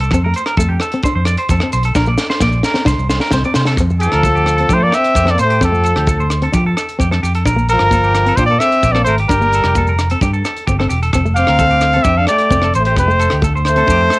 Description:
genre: highlife guitar band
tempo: 131 BPM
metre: 4/4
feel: straight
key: F major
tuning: A4 = 440 Hz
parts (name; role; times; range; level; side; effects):
- semi-hollow electric guitar; arpeggios; 0.0-14.2 s; G4 to D5; -21 LUFS; right 2 dB; tape echo
- fingered electric bass; bass; 0.0-14.1 s; E1 to F3; -16 LUFS; equal; none
- tight funk drum kit; drums; 0.0-14.2 s; hi-hat, kick drum, rim click, snare drum; -20 LUFS; equal; cassette tape
- maracas; percussion; 0.0-14.2 s; none; -31 LUFS; left 3 dB; none
- flamenco guitar; accompaniment; 0.1-14.0 s; A3 to D4; -21 LUFS; left 2 dB; none
- clear trumpet; melody; 4.0-14.2 s; A4 to F5; -14 LUFS; equal; cassette tape
- growling trombone; second line; 4.1-14.2 s; F3 to D4; -21 LUFS; left 2 dB; none
room: little or no reverb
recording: home recording on cassette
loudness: -11 LUFS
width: side -22 dB against mid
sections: 0.0-3.8 A section; 3.8-14.2 B section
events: drum fill 1.9-3.8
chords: 0.1 F; 1.9 Bb; 2.9 Csus2; 3.8 Fadd9; 7.5 Bb; 9.3 Gm7; 11.1 Fadd9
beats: | 0.12 0.57 1.03 1.49 | 1.95 2.41 2.86 3.32 | 3.78 4.24 4.70 5.16 | 5.62 6.08 6.54 7.00 | 7.46 7.92 8.38 8.84 | 9.29 9.75 10.21 10.67 | 11.13 11.59 12.05 12.51 | 12.97 13.43 13.88

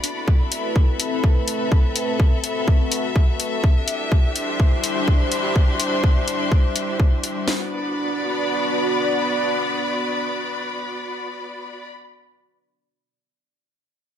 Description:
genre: melodic techno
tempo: 125 BPM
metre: 4/4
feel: straight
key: B phrygian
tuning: A4 = 439 Hz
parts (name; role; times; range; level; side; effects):
- dark analog pad; sustained chords; 0.0-11.7 s; G3 to D5; -26 LUFS; equal; chorus, phaser, sidechain pumping
- electronic hi-hat; drums; 0.0-7.3 s; none; -24 LUFS; left 4 dB; sidechain pumping on hats, sidechain pumping on toms
- clear studio string section; texture; 0.0-11.9 s; B3 to C6; -25 LUFS; left 2 dB; sidechain pumping
- house drum kit; drums; 0.3-7.6 s; hi-hat, kick drum, snare drum; -17 LUFS; equal; none
room: light reverb, digital ambience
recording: none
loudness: -18 LUFS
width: side -10 dB against mid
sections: 0.0-7.5 A section; 7.5-11.3 B section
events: none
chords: 0.0 Amadd9; 3.6 Cadd9; 7.5 Bm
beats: 0.28 0.76 1.24 | 1.72 2.20 2.68 3.16 | 3.64 4.12 4.60 5.08 | 5.56 6.04 6.52 7.00 | 7.48 7.96 8.44 8.92 | 9.40 9.88 10.36 10.84

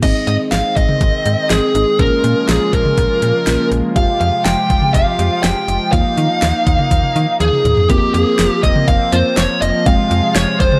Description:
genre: synth-pop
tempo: 122 BPM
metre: 4/4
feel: straight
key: unclear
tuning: A4 = 441 Hz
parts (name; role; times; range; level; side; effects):
- fuzz lead guitar; melody; 0.0-10.8 s; G4 to G5; -18 LUFS; equal; distortion
- muted felt-like synth keys; accompaniment; 0.0-10.8 s; Ab3 to G5; -24 LUFS; equal; chorus
- chorused pulse-width pad; sustained chords; 0.0-10.8 s; C3 to G4; -25 LUFS; equal; none
- slap-like FM bass; bass; 0.0-10.7 s; F1 to Eb3; -21 LUFS; equal; none
- pop drum kit; drums; 0.0-10.8 s; crash cymbal, hi-hat, kick drum, snare drum, toms; -19 LUFS; equal; none
room: light reverb, digital ambience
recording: none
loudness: -15 LUFS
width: mono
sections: 0.0-7.9 A section; 7.9-10.8 B section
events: drum fill 7.4-7.9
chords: 0.0 Ab; 2.0 Bbm7; 4.0 Fmadd9; 5.9 Ebsus2; 7.9 Bbsus2/F; 9.9 Fmadd9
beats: | 0.03 0.52 1.01 1.50 | 1.99 2.49 2.98 3.47 | 3.96 4.45 4.95 5.44 | 5.93 6.42 6.91 7.40 | 7.90 8.39 8.88 9.37 | 9.86 10.36

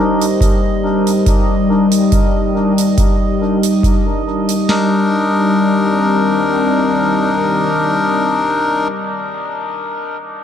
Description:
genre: ambient dub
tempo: 70 BPM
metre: 4/4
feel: straight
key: C minor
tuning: A4 = 440 Hz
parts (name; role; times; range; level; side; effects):
- deep dark ambient pad; sustained chords; 0.0-8.9 s; Eb3 to D5; -15 LUFS; left 1 dB; chorus, built-in reverb
- melodica; stabs; 0.0-8.9 s; D4 to Bb4; -18 LUFS; left 2 dB; low-pass filter, dub echo
- drifting glass-harmonics texture; texture; 0.0-4.7 s; Eb5; -26 LUFS; right 8 dB; chorus, built-in reverb
- hi-hat; drums; 0.2-4.7 s; none; -26 LUFS; right 7 dB; studio reverb
- booming analog drum machine; drums; 0.4-4.9 s; hi-hat, kick drum, snare drum; -16 LUFS; equal; studio reverb
room: moderate spring reverb, RT60 2.5 s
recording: none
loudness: -12 LUFS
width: side -9 dB against mid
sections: 0.0-4.7 A section; 4.7-8.1 B section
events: none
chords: 0.0 Cm9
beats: 0.41 | 1.26 2.12 2.98 3.83 | 4.69 5.55 6.41 7.26

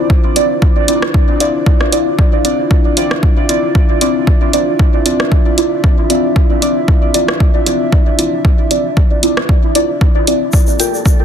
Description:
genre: dub techno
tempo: 115 BPM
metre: 4/4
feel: swing 54% on 16ths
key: D minor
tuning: A4 = 440 Hz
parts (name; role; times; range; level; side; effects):
- dark analog pad; sustained chords; 0.0-11.2 s; Bb3 to E5; -20 LUFS; equal; chorus, vintage 12-bit sampler grit, sidechain pumping
- deep mellow chord stab; stabs; 0.0-11.0 s; C4 to G5; -15 LUFS; equal; chorus, phaser, sidechain pumping, dub echo
- electronic kick drum; drums; 0.1-11.2 s; none; -11 LUFS; equal; overdrive
- punchy analog drum machine; drums; 0.4-10.9 s; hi-hat, rim click; -18 LUFS; equal; overdrive
- egg shaker; percussion; 10.5-11.2 s; none; -22 LUFS; left 3 dB; none
- wind-like tuned noise texture; texture; 10.7-11.2 s; A4; -28 LUFS; right 1 dB; built-in reverb, sidechain pumping
room: digital ambience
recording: dense, heavily limited modern master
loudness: -10 LUFS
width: side -8 dB against mid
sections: 0.0-11.2 A section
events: filter sweep on synth stab 0.0-11.2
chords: 0.0 Dm9; 10.5 Gm9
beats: | 0.10 0.62 1.14 1.67 | 2.19 2.71 3.23 3.75 | 4.27 4.80 5.32 5.84 | 6.36 6.88 7.40 7.93 | 8.45 8.97 9.49 10.01 | 10.54 11.06

